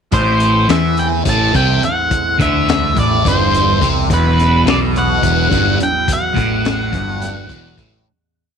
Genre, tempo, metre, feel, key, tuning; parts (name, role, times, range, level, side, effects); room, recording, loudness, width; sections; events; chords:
psychedelic rock; 212 BPM (eighths); 7/8; straight; A dorian; A4 = 438 Hz
octave-fuzz lead guitar; melody; 0.1-7.8 s; B4 to A5; -17 LUFS; left 1 dB; distortion, slapback echo
combo organ; sustained chords; 0.1-8.0 s; E3 to F#4; -26 LUFS; right 17 dB; wide subtle chorus
thick fuzz guitar; riff; 0.1-8.0 s; E2 to E3; -17 LUFS; equal; distortion, phaser
overdriven picked electric bass; bass; 0.1-8.0 s; E1 to E2; -18 LUFS; right 1 dB
crunchy breakbeat drum kit; drums; 0.1-7.9 s; hi-hat, kick drum, snare drum; -20 LUFS; left 4 dB
metallic inharmonic drone; drone; 1.8-8.1 s; A1 to E2; -25 LUFS; equal
light reverb, small room ambience; 1960s-style stereo; -12 LUFS; side -7 dB against mid
0.1-8.1 groove
fade-out 6.1-8.1
0.1 Am; 4.1 Esus2